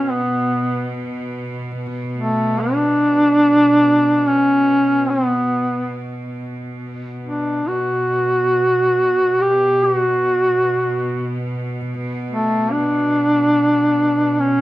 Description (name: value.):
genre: caucasian folk, Caucasian lament.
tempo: free time.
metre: none.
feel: none.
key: B minor.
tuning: A4 = 440 Hz.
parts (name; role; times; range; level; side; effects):
mellow duduk; melody; 0.0-14.6 s; A3 to G4; -15 LUFS; equal; slapback echo.
bright studio cello section; drone; 0.0-14.6 s; B2; -26 LUFS; equal; none.
room: light reverb.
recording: rough home demo mix.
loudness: -15 LUFS.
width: side -16 dB against mid.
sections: 0.0-14.6 A section.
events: none.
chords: none.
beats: free time.